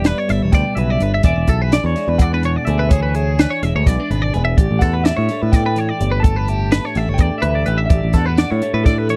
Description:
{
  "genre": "math rock and midwest emo",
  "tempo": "252 BPM (eighths)",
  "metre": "7/8",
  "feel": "straight",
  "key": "G lydian",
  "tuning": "A4 = 440 Hz",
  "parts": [
    { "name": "electric guitar through a small old amp", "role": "melody", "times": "0.0-9.2 s", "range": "A4 to A5", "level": "-27 LUFS", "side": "equal", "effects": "phaser, slapback echo" },
    { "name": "twelve-string electric guitar", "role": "accompaniment", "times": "0.0-9.2 s", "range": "G2 to B4", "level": "-27 LUFS", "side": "equal", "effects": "none" },
    { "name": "twelve-string electric guitar", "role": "arpeggios", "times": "0.0-9.2 s", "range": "G4 to E5", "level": "-26 LUFS", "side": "equal", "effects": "none" },
    { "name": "picked electric bass", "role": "bass", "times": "0.0-9.2 s", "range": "E1 to A2", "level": "-20 LUFS", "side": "equal", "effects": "none" },
    { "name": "compact cocktail drum kit", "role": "drums", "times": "0.0-9.2 s", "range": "hi-hat, kick drum, snare drum", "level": "-16 LUFS", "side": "equal", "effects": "none" }
  ],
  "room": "little or no reverb",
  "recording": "dry, close 1970s-style studio recording",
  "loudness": "-17 LUFS",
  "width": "mono",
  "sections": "0.0-9.2 A section",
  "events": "none",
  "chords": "0.0 G6; 1.3 E7; 4.6 G6"
}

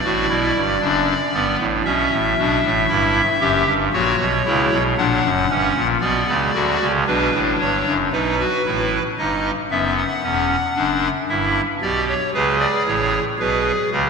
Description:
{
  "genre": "classical, baroque-style 3-part fugue for pipe organ",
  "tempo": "57 BPM",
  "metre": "4/4",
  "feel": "straight",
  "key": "unclear",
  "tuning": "A4 = 441 Hz",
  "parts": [
    { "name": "pipe organ, clarinet reed", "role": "solo", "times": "0.0-14.1 s", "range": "E1 to F#5", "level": "-16 LUFS", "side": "equal", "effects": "none" }
  ],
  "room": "wet church reverb, RT60 3.5 s",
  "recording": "none",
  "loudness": "-16 LUFS",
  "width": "side -5 dB against mid",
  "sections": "0.0-8.1 A section; 8.1-14.1 B section",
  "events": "none",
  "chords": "0.0 Bm; 1.9 C#m7b5; 3.9 F#/A#; 6.0 Bm; 8.1 B7; 10.2 Em; 12.3 C#5"
}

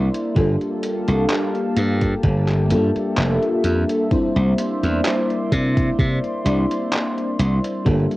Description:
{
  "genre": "vaporwave",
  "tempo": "64 BPM",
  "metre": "4/4",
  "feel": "swing 53% on 16ths",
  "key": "unclear",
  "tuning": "A4 = 440 Hz",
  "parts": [
    { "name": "FM electric piano with soft pad layer", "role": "accompaniment", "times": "0.0-8.2 s", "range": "G3 to D5", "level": "-22 LUFS", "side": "equal", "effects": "lush chorus, vintage 12-bit sampler grit, cassette tape, analog delay" },
    { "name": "warbly tape-like pad", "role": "sustained chords", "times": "0.0-8.2 s", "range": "Bb3 to C6", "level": "-26 LUFS", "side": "left 1 dB", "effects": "chorus, built-in reverb, cassette tape" },
    { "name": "glassy slap bass", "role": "bass", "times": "0.0-8.1 s", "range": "F1 to C3", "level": "-19 LUFS", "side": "equal", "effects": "tube saturation" },
    { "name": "detuned 8-bit digital drum machine", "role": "drums", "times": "0.1-8.2 s", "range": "handclaps, hi-hat", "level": "-27 LUFS", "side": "equal", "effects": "overdrive" },
    { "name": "electronic kick drum", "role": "drums", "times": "0.4-8.1 s", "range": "none", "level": "-21 LUFS", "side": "equal", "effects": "overdrive" }
  ],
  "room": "moderate booth ambience, RT60 0.2 s",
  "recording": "home recording on cassette",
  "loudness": "-17 LUFS",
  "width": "side -18 dB against mid",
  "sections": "0.0-8.2 A section",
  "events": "none",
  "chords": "0.4 Gm9; 4.1 C9"
}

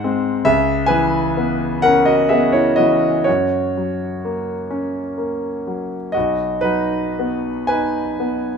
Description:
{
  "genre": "classical, romantic nocturne for solo piano",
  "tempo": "36-46 BPM (dotted quarters)",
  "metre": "12/8",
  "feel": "rubato",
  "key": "B major",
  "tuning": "A4 = 440 Hz",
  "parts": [
    { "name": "warm concert grand piano", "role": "solo", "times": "0.0-8.6 s", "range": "B1 to G#5", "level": "-16 LUFS", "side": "equal", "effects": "none" }
  ],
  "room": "light reverb",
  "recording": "minimal, uncompressed stereo recording",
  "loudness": "-16 LUFS",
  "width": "side -6 dB against mid",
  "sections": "0.0-8.6 A section",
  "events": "none",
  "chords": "0.5 C#m7; 3.3 F#; 6.1 B"
}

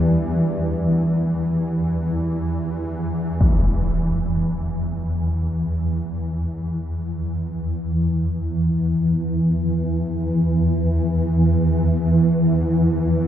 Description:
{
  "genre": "dark ambient drone",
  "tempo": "free time",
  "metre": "none",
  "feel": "none",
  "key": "E minor",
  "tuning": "A4 = 440 Hz",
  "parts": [
    { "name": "dark analog pad", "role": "sustained chords", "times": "0.0-3.4 s", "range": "E4 to D5", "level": "-34 LUFS", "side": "equal", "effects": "chorus" },
    { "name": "swarming drone", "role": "drone", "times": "0.0-13.3 s", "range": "E2 to E3", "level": "-19 LUFS", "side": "equal", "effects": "built-in reverb" },
    { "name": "impact", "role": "percussion", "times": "3.4-3.6 s", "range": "none", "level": "-22 LUFS", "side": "equal", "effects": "low-pass filter on sfx" }
  ],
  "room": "wet huge ambient reverb, RT60 8.3 s",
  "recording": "dark, warm production, nothing above 7.7 kHz",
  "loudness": "-19 LUFS",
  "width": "side -10 dB against mid",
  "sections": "0.0-3.4 A section; 3.4-13.3 B section",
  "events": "none",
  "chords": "0.0 Em; 3.4 N.C."
}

